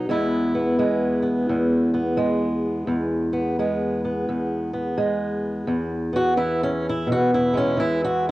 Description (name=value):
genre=acoustic country blues, solo or duo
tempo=86 BPM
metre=4/4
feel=swing 64% on 8ths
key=E major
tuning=A4 = 439 Hz
part: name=fingerpicked swing-style acoustic guitar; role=solo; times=0.0-8.3 s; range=E2 to F#4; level=-20 LUFS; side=equal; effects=none
room=moderate spring reverb, RT60 1.3 s, small room ambience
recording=home recording on cassette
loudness=-20 LUFS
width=side -17 dB against mid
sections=0.0-5.7 A section; 5.7-8.3 B section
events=steel-string acoustic guitar solo 5.7-8.3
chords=0.1 E